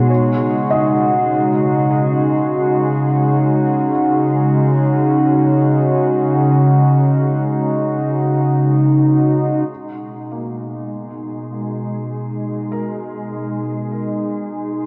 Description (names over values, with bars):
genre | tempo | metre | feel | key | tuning
ambient | free time | none | none | unclear | A4 = 440 Hz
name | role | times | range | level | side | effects
warbly tape-like pad | sustained chords | 0.0-14.9 s | B2 to F#4 | -17 LUFS | equal | chorus, built-in reverb, cassette tape
felt-muted upright piano | arpeggios | 0.0-14.9 s | A#3 to D#5 | -29 LUFS | equal | cassette tape, analog delay
organ-like drone | drone | 0.0-14.9 s | G#3 | -30 LUFS | equal | ensemble chorus, built-in reverb, cassette tape
room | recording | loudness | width
wet lush hall reverb, RT60 2.7 s | home recording on cassette | -17 LUFS | mono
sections
0.0-9.7 A section; 9.7-14.9 B section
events
fade-out on synth drone 0.0-9.7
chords
0.1 C#sus24; 9.7 Badd9